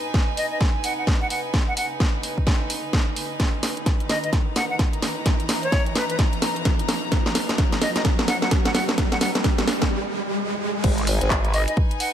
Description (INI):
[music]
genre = bass house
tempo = 129 BPM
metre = 4/4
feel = swing 61% on 16ths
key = G# minor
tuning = A4 = 440 Hz
[part]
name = riser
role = sound effects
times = 0.0-10.8 s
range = none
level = -30 LUFS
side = right 1 dB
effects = none
[part]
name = bright chamber string section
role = texture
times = 0.0-12.1 s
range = D#4 to A#5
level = -32 LUFS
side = left 1 dB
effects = sidechain pumping
[part]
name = electronic kick drum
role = drums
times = 0.1-11.9 s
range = none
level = -22 LUFS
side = equal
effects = overdrive
[part]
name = garage drum kit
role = drums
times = 0.1-12.1 s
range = crash cymbal, handclaps, hi-hat, snare drum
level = -25 LUFS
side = right 1 dB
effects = none
[part]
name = bright silver concert flute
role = melody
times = 0.4-12.1 s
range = B4 to F#5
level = -28 LUFS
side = equal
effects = digital delay
[part]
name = vowel-sweep wobble bass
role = bass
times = 10.8-11.7 s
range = G#1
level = -22 LUFS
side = equal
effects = chorus, overdrive, sidechain pumping
[sound]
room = light reverb, digital ambience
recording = none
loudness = -20 LUFS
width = side -10 dB against mid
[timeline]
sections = 0.0-10.8 A section; 10.8-12.1 B section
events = build-up 0.0-10.8; drum fill 0.0-9.9; riser 0.0-10.8; break 9.9-10.8; drop 10.8-12.1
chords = 0.0 G#m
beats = 0.14 0.61 1.07 | 1.54 2.00 2.47 2.93 | 3.40 3.86 4.33 4.79 | 5.26 5.72 6.19 6.65 | 7.12 7.58 8.05 8.51 | 8.98 9.44 9.91 10.37 | 10.84 11.30 11.77